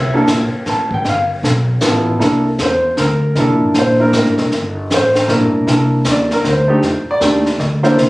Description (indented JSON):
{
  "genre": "jazz piano trio",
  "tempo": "156 BPM",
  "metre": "3/4",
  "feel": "swing 64% on 8ths",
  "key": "C mixolydian",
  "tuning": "A4 = 436 Hz",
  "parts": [
    { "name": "warm concert grand piano", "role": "melody", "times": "0.0-8.0 s", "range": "A3 to A5", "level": "-14 LUFS", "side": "equal", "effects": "none" },
    { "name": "upright bass", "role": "bass", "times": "0.0-8.1 s", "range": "E1 to F2", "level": "-18 LUFS", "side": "equal", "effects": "none" },
    { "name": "jazz brush drum kit", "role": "drums", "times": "0.3-8.1 s", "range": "brushed snare drum, hi-hat, kick drum, snare drum", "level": "-19 LUFS", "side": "left 1 dB", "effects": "none" }
  ],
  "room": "moderate club reverb, RT60 0.8 s",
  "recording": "recorded on a phone in the room, studio reverb",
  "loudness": "-12 LUFS",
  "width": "side -20 dB against mid",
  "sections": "0.0-2.2 A section; 2.2-8.1 B section",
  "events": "grand piano solo 2.2-8.1",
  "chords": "0.0 C7(no3); 1.0 G13; 2.2 C13; 6.8 F7(no3)",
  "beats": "0.27 0.66 | 1.04 1.43 1.82 | 2.20 2.59 2.97 | 3.36 3.75 4.13 | 4.52 4.90 5.29 | 5.67 6.06 6.45 | 6.83 7.21 7.60 | 7.99"
}